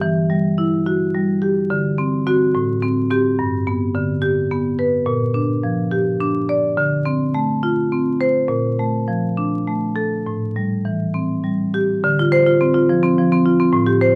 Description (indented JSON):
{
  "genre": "classical, contemporary piece for solo marimba",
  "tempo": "71 BPM (dotted quarters)",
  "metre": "6/8",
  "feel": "rubato",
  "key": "G major, D minor from 5.1 s",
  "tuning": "A4 = 438 Hz",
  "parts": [
    { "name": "marimba with medium hard mallets", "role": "solo", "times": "0.0-14.2 s", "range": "G2 to D5", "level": "-19 LUFS", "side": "equal", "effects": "none" }
  ],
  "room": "light reverb",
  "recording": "close, detailed microphones, vinyl crackle",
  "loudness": "-19 LUFS",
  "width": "mono",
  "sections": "0.0-12.0 A section; 12.0-14.2 B section",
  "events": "none",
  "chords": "0.0 Emadd9; 1.7 D7; 2.6 Am7; 3.4 G; 5.1 Bb6; 6.8 Dm7; 8.5 Bbmaj7; 10.3 Am7; 12.0 Dm7"
}